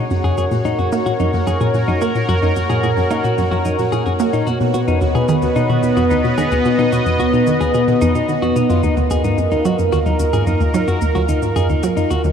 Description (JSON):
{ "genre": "ambient, sequencer-driven space music", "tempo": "110 BPM", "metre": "4/4", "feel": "straight", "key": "unclear", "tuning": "A4 = 438 Hz", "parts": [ { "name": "sweeping resonant pad", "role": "sustained chords", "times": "0.0-12.3 s", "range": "B3 to D#5", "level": "-18 LUFS", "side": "equal", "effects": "chorus" }, { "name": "clean electric guitar", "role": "arpeggios", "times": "0.0-12.2 s", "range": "Eb4 to Ab4", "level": "-24 LUFS", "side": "left 3 dB", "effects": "auto-pan, analog delay" }, { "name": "pulsing gated texture", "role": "texture", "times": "0.0-12.3 s", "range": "F4 to Gb5", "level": "-27 LUFS", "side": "equal", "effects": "chorus, built-in reverb" }, { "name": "resonant blip pluck", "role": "riff", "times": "0.1-12.3 s", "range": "D#2 to Bb3", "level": "-18 LUFS", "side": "equal", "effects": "chorus, analog delay" }, { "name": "shaker and percussion blips", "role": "percussion", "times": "0.1-12.3 s", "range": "none", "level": "-39 LUFS", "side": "left 6 dB", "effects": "analog delay" } ], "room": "moderate huge ambient reverb, RT60 7.6 s", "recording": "cassette tape", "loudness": "-14 LUFS", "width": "side -7 dB against mid", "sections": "0.0-12.3 A section", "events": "fade-in on drum 0.0-12.3", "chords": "0.1 Gb; 4.5 Badd9; 8.8 Ebm", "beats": "| 0.11 0.65 1.20 1.74 | 2.29 2.83 3.38 3.92 | 4.47 5.01 5.56 6.11 | 6.65 7.20 7.74 8.29 | 8.83 9.38 9.92 10.47 | 11.02 11.56 12.11" }